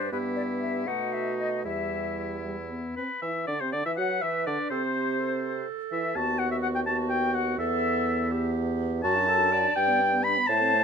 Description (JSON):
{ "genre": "quick classical-period movement for wind quintet", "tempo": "75-85 BPM (dotted quarters)", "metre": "6/8", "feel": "rubato", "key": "E minor", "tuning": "A4 = 441 Hz", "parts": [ { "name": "concert flute", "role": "melody", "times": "0.0-10.8 s", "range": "B4 to B5", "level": "-31 LUFS", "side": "left 6 dB", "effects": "none" }, { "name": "clear oboe", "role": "second line", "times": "0.0-10.8 s", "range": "D4 to B5", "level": "-28 LUFS", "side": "left 1 dB", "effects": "none" }, { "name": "bright clarinet", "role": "accompaniment", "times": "0.0-10.8 s", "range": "F#4 to D5", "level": "-33 LUFS", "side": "right 8 dB", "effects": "none" }, { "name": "mellow French horn", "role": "accompaniment", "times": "0.0-10.8 s", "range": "G3 to F#4", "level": "-33 LUFS", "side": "left 1 dB", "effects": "none" }, { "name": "mellow bassoon", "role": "bass", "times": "0.0-10.8 s", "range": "D#2 to F#3", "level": "-32 LUFS", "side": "right 4 dB", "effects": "none" } ], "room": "light reverb", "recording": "minimal, uncompressed stereo recording", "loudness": "-25 LUFS", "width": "side -6 dB against mid", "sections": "0.0-3.2 A section; 3.2-10.8 B section", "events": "none", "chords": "0.1 Em/G; 0.9 B7; 1.6 Em; 3.2 E5; 4.7 Am/C; 6.2 B/D#; 7.6 Em; 9.0 D/F#; 9.8 G" }